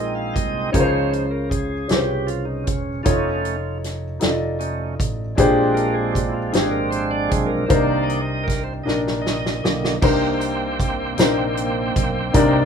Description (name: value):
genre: slow gospel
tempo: 52 BPM (dotted quarters)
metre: 6/8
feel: straight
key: unclear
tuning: A4 = 440 Hz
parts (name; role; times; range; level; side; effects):
- warm grand piano; accompaniment; 0.0-12.7 s; Bb2 to Eb5; -22 LUFS; left 3 dB; none
- bright tonewheel organ; sustained chords; 0.0-12.7 s; D3 to G5; -24 LUFS; right 4 dB; slow rotary speaker
- fingered electric bass; bass; 0.0-12.7 s; Fb1 to Db2; -28 LUFS; right 1 dB; none
- natural country drum kit; drums; 0.4-12.5 s; crash cymbal, hi-hat, kick drum, snare drum; -22 LUFS; right 1 dB; none
- warm French horn section; sustained chords; 10.0-12.7 s; Bb3 to C4; -35 LUFS; equal; none
- tambourine; percussion; 10.0-12.7 s; none; -38 LUFS; right 7 dB; none
room: little or no reverb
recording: rough home demo mix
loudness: -18 LUFS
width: side -7 dB against mid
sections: 0.0-10.0 A section; 10.0-12.7 B section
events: tonewheel organ solo 0.0-10.0; drum fill 8.9-10.0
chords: 0.0 Bb9sus4; 0.7 Dbmaj7; 3.1 Faug7; 5.4 Bb13; 7.7 Cm9